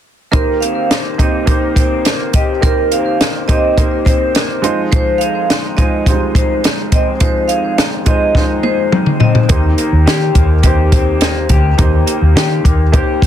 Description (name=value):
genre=indie pop, bedroom pop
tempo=105 BPM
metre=4/4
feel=straight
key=Eb major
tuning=A4 = 439 Hz
part: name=vibraphone with medium hard mallets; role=second line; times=0.3-9.3 s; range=Bb4 to F5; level=-18 LUFS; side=right 1 dB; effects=wide subtle chorus, ping-pong delay, plate reverb
part: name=electric guitar through a small old amp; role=accompaniment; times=0.3-13.3 s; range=F2 to G4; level=-20 LUFS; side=left 6 dB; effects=analog chorus, warbly pitch drift, plate reverb
part: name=warm upright piano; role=accompaniment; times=0.3-13.3 s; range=G3 to C5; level=-19 LUFS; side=right 4 dB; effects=cassette tape, plate reverb
part: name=compact cocktail drum kit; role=drums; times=0.3-13.3 s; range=hi-hat, kick drum, snare drum, toms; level=-13 LUFS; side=equal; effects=none
part: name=vintage muted fingered electric bass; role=bass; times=9.5-13.3 s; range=D2 to Eb3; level=-13 LUFS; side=equal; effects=none
room=light reverb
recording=dense, heavily limited modern master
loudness=-11 LUFS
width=side -10 dB against mid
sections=0.3-9.5 A section; 9.5-13.3 B section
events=drum fill 8.4-9.5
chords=0.3 Eb6; 4.6 Fm7; 9.5 Eb6